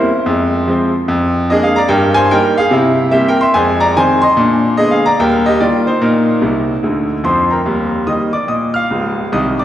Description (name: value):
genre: jazz, stride piano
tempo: 146 BPM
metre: 4/4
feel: swing 64% on 8ths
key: Eb major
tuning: A4 = 440 Hz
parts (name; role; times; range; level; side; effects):
- bright concert grand piano; solo; 0.0-9.6 s; Db1 to F6; -11 LUFS; equal; none
room: wet church reverb, RT60 3.4 s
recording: recorded in a church or concert hall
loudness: -11 LUFS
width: side -12 dB against mid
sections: 0.0-7.7 A section; 7.7-9.6 B section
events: grand piano fill 6.4-7.7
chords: 0.3 Fm; 1.1 Bb7/F; 1.9 Eb/G; 2.7 C7; 3.6 Fm7; 4.4 Bb7b9; 5.2 Eb; 6.0 Eb5/Bb; 6.8 Bb; 7.7 Eb